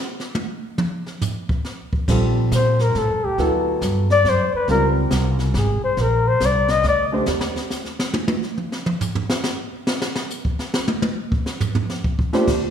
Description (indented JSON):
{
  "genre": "jazz, small-group swing and bop",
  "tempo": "139 BPM",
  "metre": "3/4",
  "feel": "swing 65% on 8ths",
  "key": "Bb major",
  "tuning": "A4 = 436 Hz",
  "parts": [
    { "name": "jazz brush drum kit", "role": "drums", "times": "0.2-12.7 s", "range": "brushed snare drum, crash cymbal, hi-hat, kick drum, snare drum, toms", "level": "-23 LUFS", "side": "equal", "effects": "none" },
    { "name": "warm baby grand piano", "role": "accompaniment", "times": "2.1-7.3, 12.3-12.5 s", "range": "Bb2 to C5", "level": "-22 LUFS", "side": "right 1 dB", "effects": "none" },
    { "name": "upright bass", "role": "bass", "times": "2.1-7.5, 12.5-12.7 s", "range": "Ab1 to Bb2", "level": "-21 LUFS", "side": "equal", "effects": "none" },
    { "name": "breathy flugelhorn", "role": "melody", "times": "2.5-7.0 s", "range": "G4 to Eb5", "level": "-20 LUFS", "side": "left 4 dB", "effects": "none" }
  ],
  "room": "wet concert hall reverb, RT60 1.8 s",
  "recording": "recorded in a church or concert hall",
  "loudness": "-18 LUFS",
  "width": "side -8 dB against mid",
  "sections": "0.0-2.1 A section; 2.1-12.5 A section",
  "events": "flugelhorn solo 0.0-12.5; drum solo 0.0-2.1, 7.3-12.5",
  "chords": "0.0 N.C.; 2.1 Bbmaj7(no3); 3.4 Dadd9; 4.7 Dbmaj7; 6.0 Bb; 7.3 N.C.; 9.9 Bbmaj7"
}